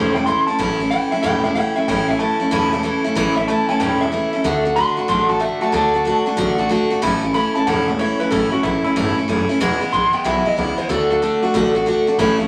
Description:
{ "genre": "rockabilly", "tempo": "186 BPM", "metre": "4/4", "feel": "swing 65% on 8ths", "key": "A mixolydian", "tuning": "A4 = 440 Hz", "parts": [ { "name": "electric guitar through a small old amp", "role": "melody", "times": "0.0-11.7 s", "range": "E4 to C6", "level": "-23 LUFS", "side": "equal", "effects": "none" }, { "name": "picked steel-string acoustic guitar", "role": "accompaniment", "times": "0.0-12.5 s", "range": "E2 to F#4", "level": "-20 LUFS", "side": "equal", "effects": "none" }, { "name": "upright bass", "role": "bass", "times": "0.0-12.5 s", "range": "E1 to D2", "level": "-28 LUFS", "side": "equal", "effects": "none" } ], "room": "wet large studio reverb, RT60 1.2 s", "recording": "vinyl crackle", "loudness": "-18 LUFS", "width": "mono", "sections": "0.0-12.5 A section", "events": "clean electric guitar solo 0.0-12.5", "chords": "0.0 A; 4.5 D; 7.0 A; 9.6 E; 10.9 D", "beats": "0.27 | 0.59 0.91 1.23 1.55 | 1.87 2.19 2.52 2.84 | 3.16 3.48 3.81 4.13 | 4.45 4.77 5.09 5.42 | 5.74 6.06 6.38 6.71 | 7.03 7.35 7.67 8.00 | 8.32 8.64 8.96 9.28 | 9.61 9.93 10.25 10.57 | 10.89 11.21 11.54 11.86 | 12.18" }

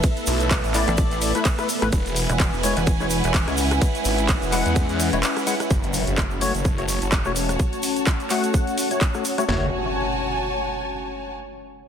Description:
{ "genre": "bass house", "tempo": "127 BPM", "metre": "4/4", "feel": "swing 56% on 16ths", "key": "F# minor", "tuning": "A4 = 440 Hz", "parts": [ { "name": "deep dark ambient pad", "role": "sustained chords", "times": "0.0-9.7 s", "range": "G#3 to C#5", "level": "-29 LUFS", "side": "left 1 dB", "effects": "chorus, built-in reverb, sidechain pumping" }, { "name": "garage drum kit", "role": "drums", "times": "0.0-9.6 s", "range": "kick drum, snare drum, toms", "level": "-21 LUFS", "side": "equal", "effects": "none" }, { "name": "garage drum kit", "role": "drums", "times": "0.0-9.5 s", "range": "handclaps, hi-hat, ride cymbal, rim click", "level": "-27 LUFS", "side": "equal", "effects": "none" }, { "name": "tube shaker", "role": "percussion", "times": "0.0-9.5 s", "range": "none", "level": "-32 LUFS", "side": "right 4 dB", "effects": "none" }, { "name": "clear symphonic string section", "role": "texture", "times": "0.0-11.3 s", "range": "E4 to A5", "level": "-28 LUFS", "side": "right 1 dB", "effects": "sidechain pumping" }, { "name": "phased detuned saw bass", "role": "bass", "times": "0.3-9.7 s", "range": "E1 to E2", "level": "-25 LUFS", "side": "equal", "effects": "phaser, tube saturation, sidechain pumping" }, { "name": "percussive organ stab", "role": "stabs", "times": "0.7-9.7 s", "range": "G#3 to F#5", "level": "-27 LUFS", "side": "left 4 dB", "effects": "ensemble chorus, cassette tape, sidechain pumping, digital delay" }, { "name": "pulsing pluck wobble bass", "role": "bass", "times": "0.9-3.8 s", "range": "E1 to C#2", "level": "-23 LUFS", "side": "equal", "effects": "chorus, sidechain pumping" }, { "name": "impact", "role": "sound effects", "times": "5.7-11.4 s", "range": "none", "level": "-34 LUFS", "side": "equal", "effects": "none" } ], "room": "light reverb, digital ambience", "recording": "dense, heavily limited modern master", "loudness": "-19 LUFS", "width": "side -8 dB against mid", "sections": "0.0-5.7 A section; 5.7-9.5 B section; 9.5-11.4 C section", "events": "drop 0.0-5.7; kick drops out 5.2-5.7; impact 5.7-7.6", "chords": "0.0 Asus2; 1.9 E6; 5.7 F#m", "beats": "| 0.04 0.51 0.98 1.45 | 1.93 2.40 2.87 3.34 | 3.81 4.29 4.76 5.23 | 5.71 6.18 6.65 7.12 | 7.59 8.07 8.54 9.01 | 9.48 9.96 10.43 10.90" }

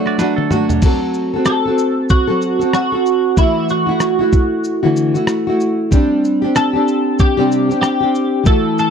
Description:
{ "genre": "acoustic pop", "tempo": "94 BPM", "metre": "4/4", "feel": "swing 60% on 16ths", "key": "unclear", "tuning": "A4 = 439 Hz", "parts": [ { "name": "nylon-string guitar", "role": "accompaniment", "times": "0.0-8.9 s", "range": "C3 to A4", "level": "-16 LUFS", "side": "equal", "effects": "double-tracked left and right" }, { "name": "pedal steel guitar", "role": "second line", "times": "0.1-1.0 s", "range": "F#3 to D5", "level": "-24 LUFS", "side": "right 10 dB", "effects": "none" }, { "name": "dusty soul sampler-style drum kit", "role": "drums", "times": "0.1-8.9 s", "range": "crash cymbal, kick drum, rim click, shaker, snare drum, toms", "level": "-16 LUFS", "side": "equal", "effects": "none" }, { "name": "twelve-string electric guitar", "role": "melody", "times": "1.5-8.9 s", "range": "E4 to A4", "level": "-17 LUFS", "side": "right 1 dB", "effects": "analog chorus" } ], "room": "little or no reverb", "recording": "dry, close 1970s-style studio recording", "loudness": "-13 LUFS", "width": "side -7 dB against mid", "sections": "0.8-8.9 A section", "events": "drum fill 0.2-0.8", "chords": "0.0 Bm7; 0.8 F#dim; 3.4 Dadd9; 5.9 Csus2", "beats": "0.19 | 0.83 1.47 2.10 2.74 | 3.37 4.01 4.64 5.28 | 5.92 6.55 7.19 7.83 | 8.46" }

